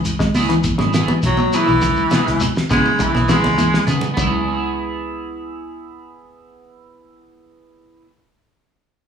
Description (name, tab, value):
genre	afrobeat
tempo	102 BPM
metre	4/4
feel	straight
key	C# minor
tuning	A4 = 440 Hz
part	clean electric guitar	arpeggios	0.0-4.3 s	B2 to G#3	-22 LUFS	left 4 dB	slapback echo
part	fingered electric bass	bass	0.0-8.0 s	G#1 to C#3	-22 LUFS	equal	none
part	shekere	percussion	0.0-4.3 s	none	-29 LUFS	left 4 dB	slapback echo
part	damped 70s drum kit	drums	0.1-4.3 s	hi-hat, kick drum, snare drum	-23 LUFS	right 1 dB	slapback echo
part	electric guitar at the edge of break-up	stabs	0.3-8.1 s	B3 to G#4	-25 LUFS	right 5 dB	analog chorus, slapback echo
part	congas	percussion	0.3-4.3 s	none	-23 LUFS	right 2 dB	slapback echo
part	raspy baritone saxophone	melody	1.3-3.8 s	E3 to G#3	-18 LUFS	equal	slapback echo
room	light reverb, studio reverb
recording	live gig heard through the venue's PA, club reverb, small room ambience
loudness	-15 LUFS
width	side -7 dB against mid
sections	0.0-4.2 A section; 4.2-6.5 B section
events	baritone saxophone solo 0.0-4.2; drum fill 3.6-4.2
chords	0.0 C#m7